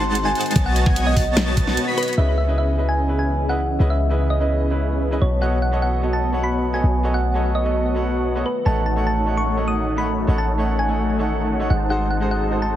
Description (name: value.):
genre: future bass.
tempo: 148 BPM.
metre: 4/4.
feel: half-time.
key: C# minor.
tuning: A4 = 440 Hz.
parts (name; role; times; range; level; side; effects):
thumb-piano-like synth pluck; melody; 0.0-12.8 s; B4 to D#6; -25 LUFS; equal; chorus, sidechain pumping, ping-pong delay.
shimmering ambient pad; sustained chords; 0.0-12.8 s; C#3 to F#4; -31 LUFS; left 2 dB; chorus, built-in reverb, sidechain pumping.
airy dreamy lead; arpeggios; 0.0-2.2 s; G#6 to B6; -28 LUFS; equal; chorus, cassette tape, sidechain pumping.
dense compressed supersaw; riff; 0.0-12.8 s; G#3 to B5; -25 LUFS; equal; cassette tape, sidechain pumping, low-pass filter.
warm 808-style bass; bass; 0.0-12.8 s; G#1 to C#2; -21 LUFS; equal; sidechain pumping.
dubstep drum kit; drums; 0.2-2.3 s; crash cymbal, hi-hat, snare drum; -25 LUFS; equal; low-pass filter on hats, low-pass filter on snare, low-pass filter on cymbals.
electronic kick drum; drums; 0.6-1.7 s; none; -19 LUFS; equal; none.
clear baby grand piano; accompaniment; 2.2-12.8 s; C#3 to F#5; -27 LUFS; right 2 dB; sidechain pumping.
room: light reverb.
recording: heavily compressed radio sound.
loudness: -18 LUFS.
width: side -12 dB against mid.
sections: 0.0-2.2 A section; 2.2-12.8 B section.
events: drop 0.0-2.2.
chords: 0.0 G#7b9; 0.6 B7; 2.2 C#m7; 5.2 B7; 8.7 D#m7b5/A; 11.7 G#7b9.